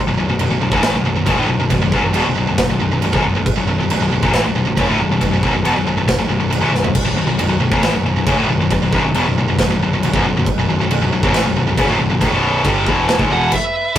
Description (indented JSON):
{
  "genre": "heavy metal",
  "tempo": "137 BPM",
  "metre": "4/4",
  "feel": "straight",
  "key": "B minor",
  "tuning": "A4 = 440 Hz",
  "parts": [
    { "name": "heavy high-gain guitar", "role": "riff", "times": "0.1-14.0 s", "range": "B1 to G3", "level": "-23 LUFS", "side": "right 5 dB", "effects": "distortion" },
    { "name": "high-gain distorted guitar", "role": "riff", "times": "0.1-14.0 s", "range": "B1 to G3", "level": "-17 LUFS", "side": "left 2 dB", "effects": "distortion" },
    { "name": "fuzz picked electric bass", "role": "bass", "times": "0.1-14.0 s", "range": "B0 to A1", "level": "-21 LUFS", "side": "equal", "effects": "overdrive" },
    { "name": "big rock drum kit", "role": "drums", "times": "0.4-14.0 s", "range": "china cymbal, crash cymbal, kick drum, snare drum, toms", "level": "-20 LUFS", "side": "right 1 dB", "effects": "none" },
    { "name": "high-gain lead guitar", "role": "melody", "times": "13.3-13.9 s", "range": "E5 to F#5", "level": "-18 LUFS", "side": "right 3 dB", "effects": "distortion" },
    { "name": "high-gain lead guitar", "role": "second line", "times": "13.3-14.0 s", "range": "A4 to B4", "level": "-26 LUFS", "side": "right 2 dB", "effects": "distortion" }
  ],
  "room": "moderate booth ambience, RT60 0.2 s",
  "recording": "rough rehearsal-room recording",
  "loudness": "-14 LUFS",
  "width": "side -11 dB against mid",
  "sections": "0.0-14.0 A section",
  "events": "drum fill 6.7; stop 13.5-14.0",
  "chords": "0.0 Bm"
}